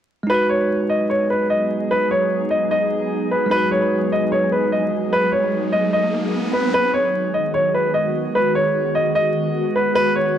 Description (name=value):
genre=hip hop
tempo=149 BPM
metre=4/4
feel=half-time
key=G# minor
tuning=A4 = 440 Hz
part: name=bell-like tine electric piano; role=accompaniment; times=0.2-6.8 s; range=G#3 to B4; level=-24 LUFS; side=right 1 dB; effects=wide subtle chorus, low-pass filter
part: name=dark concert grand piano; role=melody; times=0.3-10.4 s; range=B4 to D#5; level=-18 LUFS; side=equal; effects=low-pass filter, analog delay
part: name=glassy FM pad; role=sustained chords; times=1.1-10.4 s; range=D#3 to G#4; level=-24 LUFS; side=equal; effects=ensemble chorus, built-in reverb
part: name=riser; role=sound effects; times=4.8-6.7 s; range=none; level=-28 LUFS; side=right 2 dB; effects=none
room=light reverb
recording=dry, gritty hardware recording, vinyl crackle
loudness=-17 LUFS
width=side -9 dB against mid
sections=0.3-6.7 A section; 6.7-10.4 B section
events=riser 4.8-6.7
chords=0.3 G#m7